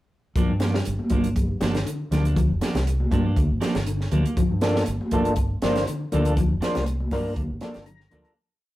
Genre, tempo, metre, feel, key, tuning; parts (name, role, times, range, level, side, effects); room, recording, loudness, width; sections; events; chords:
afrobeat; 120 BPM; 4/4; swing 53% on 16ths; G minor; A4 = 443 Hz
mellow electric guitar; arpeggios; 0.4-8.3 s; D3 to G3; -30 LUFS; left 3 dB; spring reverb, slapback echo
clean electric guitar; stabs; 0.4-8.4 s; F3 to D4; -30 LUFS; right 3 dB
deep dub fingered electric bass; bass; 0.4-8.2 s; F1 to G2; -25 LUFS; equal
compact cocktail drum kit; drums; 0.4-8.4 s; hi-hat, kick drum, snare drum; -27 LUFS; equal
congas; percussion; 0.6-8.3 s; -30 LUFS; equal
mellow tonewheel organ; accompaniment; 4.6-8.3 s; Bb3 to Bb5; -26 LUFS; left 1 dB; slow rotary speaker, overdrive, chorus vibrato
moderate studio reverb, RT60 0.6 s; rough rehearsal-room recording, warm saturation; -21 LUFS; side -16 dB against mid
0.4-8.4 groove
fade-out 6.4-8.4; tonewheel organ fill 7.6-8.4
0.4 Gm7